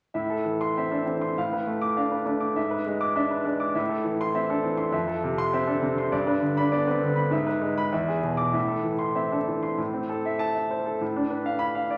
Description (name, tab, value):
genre	classical, virtuoso piano study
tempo	100 BPM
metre	2/4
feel	rubato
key	A minor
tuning	A4 = 436 Hz
part	clear grand piano	solo	0.1-12.0 s	E2 to D6	-26 LUFS	equal	none
room	wet recital hall reverb, RT60 1.4 s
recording	vinyl crackle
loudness	-26 LUFS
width	mono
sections	0.2-9.8 A section; 9.8-12.0 A section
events	none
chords	0.2 Am; 1.4 Bm7b5/A; 2.6 E7/G#; 3.7 Am; 4.9 Fmaj7; 6.1 G; 7.3 E/G#; 7.9 E7; 8.5 Am; 11.0 Bm7b5/A